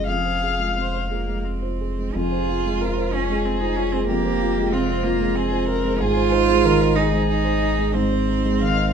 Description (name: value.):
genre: neoclassical piano and strings.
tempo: 82-95 BPM.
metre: 3/4.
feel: rubato.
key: F minor.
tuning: A4 = 441 Hz.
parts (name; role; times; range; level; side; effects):
dark violin; melody; 0.0-8.9 s; F4 to F5; -26 LUFS; left 4 dB; none.
rich cello; second line; 0.0-8.9 s; Bb3 to C5; -24 LUFS; right 8 dB; none.
felt-muted upright piano; accompaniment; 0.0-8.9 s; F2 to Db5; -24 LUFS; equal; none.
warm sub bass; bass; 0.0-8.9 s; F1 to Ab1; -26 LUFS; equal; none.
marimba with medium mallets; arpeggios; 0.1-8.9 s; F4 to Eb5; -30 LUFS; left 2 dB; none.
room: light reverb.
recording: minimal, uncompressed stereo recording.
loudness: -19 LUFS.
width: side -7 dB against mid.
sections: 0.0-2.2 A section; 2.2-8.9 A section.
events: none.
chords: 0.1 Fm; 6.0 Ab.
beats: | 0.07 0.77 1.45 | 2.15 2.81 3.45 | 4.09 4.73 5.36 | 6.01 6.64 7.29 | 7.95 8.62.